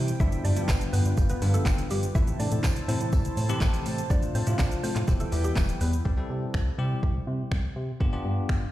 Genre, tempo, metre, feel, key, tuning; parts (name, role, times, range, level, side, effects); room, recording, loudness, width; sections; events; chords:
dance-pop; 123 BPM; 4/4; straight; A4 = 440 Hz
bell-like tine electric piano; accompaniment; 0.0-8.6 s; C3 to A4; -33 LUFS; left 3 dB; fast stereo tremolo, sidechain pumping
chorused pulse-width pad; sustained chords; 0.0-6.0 s; E4 to A5; -36 LUFS; right 1 dB; sidechain pumping
chorused synth bass; bass; 0.0-8.7 s; E1 to C3; -27 LUFS; equal; sidechain pumping
smooth R&B drum kit; drums; 0.1-8.6 s; finger snaps, handclaps, hi-hat, kick drum, shaker, snare drum; -27 LUFS; equal; overdrive
mallet-like synth pluck; melody; 0.2-5.9 s; G3 to E5; -36 LUFS; equal; chorus, sidechain pumping, dub echo
tambourine; percussion; 0.7-5.9 s; -46 LUFS; right 6 dB
digital ambience; played on a big sound system in a bare room, stone room reverb; -24 LUFS; side -14 dB against mid
0.0-6.1 A section; 6.1-8.7 B section
drop 0.0-6.1; tine electric piano fill 8.5
0.2 G7; 2.2 Am; 4.1 F/A; 5.1 Em; 6.1 C; 8.0 G7